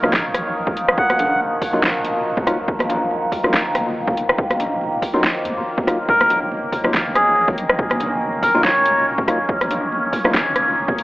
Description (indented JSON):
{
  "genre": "deep dubstep",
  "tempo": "141 BPM",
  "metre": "4/4",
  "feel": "swing 55% on 16ths, half-time",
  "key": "Eb minor",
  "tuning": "A4 = 440 Hz",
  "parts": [
    { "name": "overtone-sweeping drone", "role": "sustained chords", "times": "0.0-11.0 s", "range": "Eb3 to Db4", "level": "-22 LUFS", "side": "equal", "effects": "chorus, built-in reverb" },
    { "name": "percussive organ stab", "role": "stabs", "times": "0.0-10.3 s", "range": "Gb3 to F4", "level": "-26 LUFS", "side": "left 1 dB", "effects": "chorus, dub echo" },
    { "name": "deep soft wobble bass", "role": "bass", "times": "0.0-11.0 s", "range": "Eb1 to Eb2", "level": "-34 LUFS", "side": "equal", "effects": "chorus" },
    { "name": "deep house drum kit", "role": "drums", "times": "0.0-11.0 s", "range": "hi-hat, rim click, snare drum", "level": "-20 LUFS", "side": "equal", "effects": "overdrive" },
    { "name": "congas", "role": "percussion", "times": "0.0-11.0 s", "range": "none", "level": "-28 LUFS", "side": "equal", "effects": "dub echo" },
    { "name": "electronic kick drum", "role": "drums", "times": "0.7-11.0 s", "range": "none", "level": "-23 LUFS", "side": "equal", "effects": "overdrive" },
    { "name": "melodica", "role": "melody", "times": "1.0-1.4, 6.1-9.1 s", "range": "Ab4 to Gb5", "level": "-20 LUFS", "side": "equal", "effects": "dub echo" }
  ],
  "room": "moderate huge ambient reverb, RT60 4.4 s",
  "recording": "vinyl crackle, telephone sound",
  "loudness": "-16 LUFS",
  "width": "side -19 dB against mid",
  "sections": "0.0-11.0 A section",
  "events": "none",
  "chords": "0.0 Ebmadd9"
}